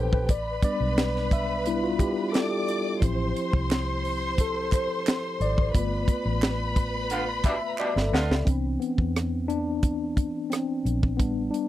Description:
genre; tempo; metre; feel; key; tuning
lush 1970s-style soul; 88 BPM; 4/4; straight; unclear; A4 = 444 Hz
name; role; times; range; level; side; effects
warm studio string section; second line; 0.0-8.4 s; G4 to D6; -31 LUFS; equal; none
mellow tine electric piano; accompaniment; 0.0-11.7 s; E3 to E5; -28 LUFS; left 2 dB; medium stereo tremolo
vintage muted fingered electric bass; bass; 0.0-11.5 s; G1 to E2; -30 LUFS; equal; none
tight funk drum kit; drums; 0.1-11.7 s; hi-hat, kick drum, rim click, snare drum; -24 LUFS; equal; none
group handclap; percussion; 3.7-7.9 s; none; -38 LUFS; right 8 dB; none
clear horn section; stabs; 7.1-8.3 s; B2 to F4; -29 LUFS; right 2 dB; none
room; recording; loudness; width
little or no reverb; dry, close 1970s-style studio recording; -24 LUFS; side -14 dB against mid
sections
0.0-8.5 A section; 8.5-11.7 B section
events
tine electric piano solo 0.0-8.5, 8.5-11.7; band accent 5.7-8.5; drum fill 7.8-8.5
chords
0.3 A9sus4; 3.0 Dm9 (rootless); 5.7 G7; 8.5 Cmaj7

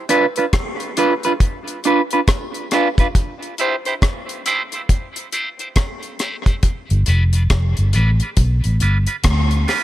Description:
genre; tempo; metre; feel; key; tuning
dub reggae; 69 BPM; 4/4; swing 62% on 16ths; unclear; A4 = 438 Hz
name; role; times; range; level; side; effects
clean electric guitar; accompaniment; 0.1-9.8 s; D4 to C5; -19 LUFS; right 2 dB; phaser, high-pass filter, tape echo
deep reggae drum kit; drums; 0.1-9.8 s; hi-hat, kick drum, rim click; -19 LUFS; equal; none
vintage muted fingered electric bass; bass; 6.9-9.6 s; F1 to D2; -15 LUFS; equal; none
room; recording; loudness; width
light reverb, small room reverb; none; -16 LUFS; side -13 dB against mid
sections
0.0-9.8 A section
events
break 0.0-6.6; filter sweep on clean electric guitar 0.0-9.8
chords
0.0 Dm6; 3.1 Em; 6.6 G7

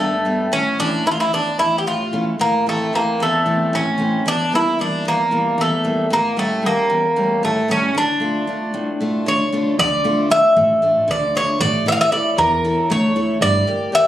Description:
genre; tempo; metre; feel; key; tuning
greek folk; 228 BPM (eighths); 7/8; straight; D harmonic minor; A4 = 440 Hz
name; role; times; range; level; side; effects
Greek bouzouki; melody; 0.0-14.1 s; A3 to F5; -17 LUFS; equal; none
picked steel-string acoustic guitar; accompaniment; 0.0-14.1 s; E2 to D5; -22 LUFS; equal; none
upright bass; bass; 9.8-13.6 s; G1 to E2; -25 LUFS; equal; none
room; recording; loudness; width
moderate studio reverb, RT60 0.6 s; recorded on a phone in the room, club reverb; -16 LUFS; side -12 dB against mid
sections
0.0-9.8 A section; 9.8-14.1 B section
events
speeding up 0.0-14.1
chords
0.0 G; 0.5 A; 2.4 Am; 4.3 Edim; 6.1 A7; 8.0 Dm; 11.6 A; 13.4 Gm

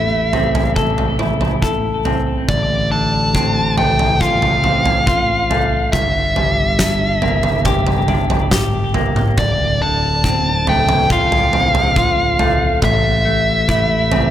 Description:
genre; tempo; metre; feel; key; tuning
post-rock; 70 BPM; 4/4; straight; D minor; A4 = 440 Hz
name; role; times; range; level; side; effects
nasal lead guitar with a parked wah; melody; 0.0-14.3 s; D5 to A5; -18 LUFS; equal; overdrive, digital delay
semi-hollow electric guitar; arpeggios; 0.0-14.3 s; D2 to A4; -21 LUFS; left 2 dB; digital delay
growling fingered electric bass; bass; 0.0-14.3 s; D1 to A1; -21 LUFS; equal; overdrive
huge arena drum kit; drums; 0.3-14.3 s; kick drum, snare drum, toms; -18 LUFS; right 1 dB; none
room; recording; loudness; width
light reverb, studio reverb; none; -13 LUFS; side -11 dB against mid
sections
0.0-14.3 A section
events
none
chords
0.0 Am; 2.5 Dm7/A; 5.9 Gm; 9.4 Dm7; 12.8 Am

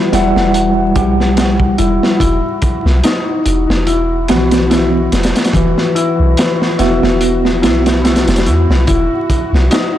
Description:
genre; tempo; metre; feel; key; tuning
trip hop; 72 BPM; 4/4; swing 55% on 16ths; unclear; A4 = 445 Hz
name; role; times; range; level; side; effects
tine electric piano; accompaniment; 0.0-8.9 s; E3 to F#5; -16 LUFS; right 1 dB; medium stereo tremolo, harmonic tremolo, tape echo
concert harp; arpeggios; 0.0-10.0 s; E3 to E5; -17 LUFS; left 3 dB; vintage 12-bit sampler grit, digital delay
bowed-like drone; texture; 0.0-10.0 s; F#4; -26 LUFS; right 2 dB; built-in reverb
soft 808-style bass; bass; 0.1-9.7 s; E1 to E2; -15 LUFS; equal; tube saturation
crunchy breakbeat drum kit; drums; 0.1-9.9 s; hi-hat, kick drum, snare drum; -16 LUFS; equal; none
room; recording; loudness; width
light reverb; blown-out, overdriven recording, vinyl crackle, overdrive; -10 LUFS; side -12 dB against mid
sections
0.0-10.0 A section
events
none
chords
0.0 Emadd9; 2.2 Bsus4/E; 8.9 Esus2

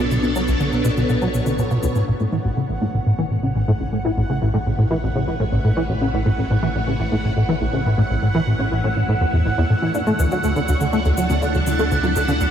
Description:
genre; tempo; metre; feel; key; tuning
ambient, sequencer-driven space music; 122 BPM; 4/4; straight; unclear; A4 = 440 Hz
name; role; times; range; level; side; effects
phased string machine; sustained chords; 0.0-12.5 s; A2 to A5; -26 LUFS; equal; ensemble chorus, phaser
plucky analog bass; riff; 0.0-12.5 s; A1 to A3; -18 LUFS; equal; ensemble chorus, cassette tape, tape echo
warm sub bass; bass; 0.0-12.5 s; A1 to D2; -29 LUFS; equal; none
cabasa and congas; percussion; 0.1-2.1, 9.9-12.5 s; none; -34 LUFS; left 2 dB; tape echo
bubbling stepped-filter texture; texture; 2.1-12.5 s; F#5; -27 LUFS; right 2 dB; chorus, built-in reverb
room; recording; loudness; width
wet cathedral reverb, RT60 6.2 s; in a vast, echoing space; -17 LUFS; side -9 dB against mid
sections
0.0-2.1 A section; 2.1-12.5 B section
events
fade-in on string machine 2.1-12.5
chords
0.0 Bm7; 2.1 Aadd9; 9.9 Dsus2

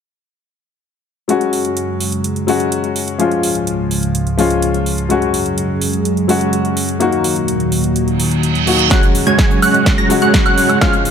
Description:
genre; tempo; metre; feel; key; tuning
EDM, festival progressive house; 126 BPM; 4/4; straight; F# major; A4 = 440 Hz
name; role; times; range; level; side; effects
warm baby grand piano; accompaniment; 1.3-11.1 s; E#3 to F#4; -18 LUFS; left 4 dB; vintage 12-bit sampler grit, sidechain pumping, tape echo
lush unison pad; sustained chords; 1.3-11.1 s; C#2 to G#3; -18 LUFS; right 1 dB; chorus, sidechain pumping
big-room dance drum kit; drums; 1.3-11.1 s; hi-hat, shaker, snare drum, woodblock; -21 LUFS; right 3 dB; none
reverse cymbal and riser; sound effects; 8.2-11.1 s; none; -21 LUFS; right 8 dB; none
plucky unison lead; arpeggios; 8.9-11.0 s; E#6 to A#6; -17 LUFS; right 2 dB; sidechain pumping, tape echo
dense compressed supersaw; riff; 8.9-11.0 s; G#3 to A#5; -17 LUFS; right 3 dB; sidechain pumping, low-pass filter, tape echo
electronic kick drum; drums; 8.9-10.9 s; none; -14 LUFS; equal; none
room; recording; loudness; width
light reverb, digital ambience; dark, warm production; -13 LUFS; side -7 dB against mid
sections
1.3-8.9 A section; 8.9-11.1 B section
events
filter sweep on analog synth pad 1.3-8.9; reverse cymbal 8.2-8.9; build-up 8.9-11.1; drum fill 8.9-11.1; filter sweep on digital synth lead 8.9-11.1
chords
1.3 F#sus2; 3.2 C#; 5.1 F#sus2; 7.0 D#m; 8.9 F#sus2

